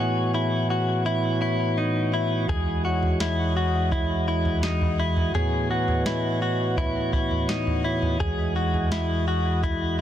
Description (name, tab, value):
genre	dream pop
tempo	84 BPM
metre	4/4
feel	straight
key	E major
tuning	A4 = 440 Hz
part	mellow tonewheel organ	sustained chords	0.0-10.0 s	E2 to D#5	-25 LUFS	right 1 dB	slow rotary speaker
part	direct-recorded clean electric guitar	arpeggios	0.0-10.0 s	D#4 to G#4	-27 LUFS	left 2 dB	wide subtle chorus, tape echo
part	soft vintage rhythm box	drums	2.5-9.8 s	kick drum, snare drum, toms	-28 LUFS	right 1 dB	none
part	vibraphone with soft mallets	texture	2.9-8.5 s	B4 to D#5	-38 LUFS	right 2 dB	tape echo
room	light reverb, digital ambience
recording	dense, heavily limited modern master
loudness	-22 LUFS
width	side -10 dB against mid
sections	0.0-10.0 A section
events	none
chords	0.0 A69; 2.5 Emaj7; 5.3 A69; 8.2 Emaj7